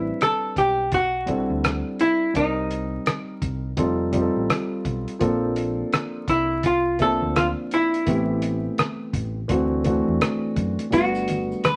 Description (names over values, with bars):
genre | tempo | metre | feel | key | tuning
hip hop, jazz-hop | 84 BPM | 4/4 | swing 63% on 16ths | unclear | A4 = 440 Hz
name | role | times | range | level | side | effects
archtop guitar, miked and amplified | melody | 0.0-11.8 s | Eb4 to B4 | -24 LUFS | equal | none
dark concert grand piano | accompaniment | 0.0-11.8 s | E3 to E5 | -27 LUFS | equal | none
deep dub fingered electric bass | bass | 0.0-11.5 s | F1 to F#2 | -32 LUFS | equal | none
cloth-damped thuddy drum kit | drums | 0.2-11.8 s | hi-hat, kick drum, rim click | -28 LUFS | equal | none
tube shaker and congas | percussion | 10.9-11.8 s | none | -34 LUFS | equal | none
room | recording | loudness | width
moderate studio reverb, RT60 0.7 s | vinyl crackle | -23 LUFS | mono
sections
0.0-11.8 A section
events
none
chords
0.0 Am11; 2.4 Cm7; 3.8 F7; 5.2 Bbmaj7; 8.1 Am7; 9.5 D7; 10.9 Gmaj7